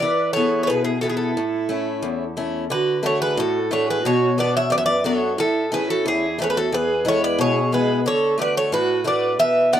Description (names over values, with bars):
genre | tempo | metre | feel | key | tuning
greek folk, Greek bouzouki band | 90 BPM | 2/4 | straight | unclear | A4 = 440 Hz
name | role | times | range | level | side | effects
Greek bouzouki | melody | 0.0-9.8 s | G#4 to F#5 | -21 LUFS | equal | none
dark violin | second line | 0.0-9.8 s | E4 to D5 | -24 LUFS | right 4 dB | none
picked acoustic archtop guitar | accompaniment | 0.0-9.8 s | E2 to G#4 | -23 LUFS | left 3 dB | none
room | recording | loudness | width
light reverb | dry, close 1970s-style studio recording | -18 LUFS | side -10 dB against mid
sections
0.0-2.7 A section; 2.7-9.8 B section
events
none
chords
0.0 E; 1.4 A; 2.7 D; 4.0 Bm; 5.4 A; 6.7 E; 8.1 D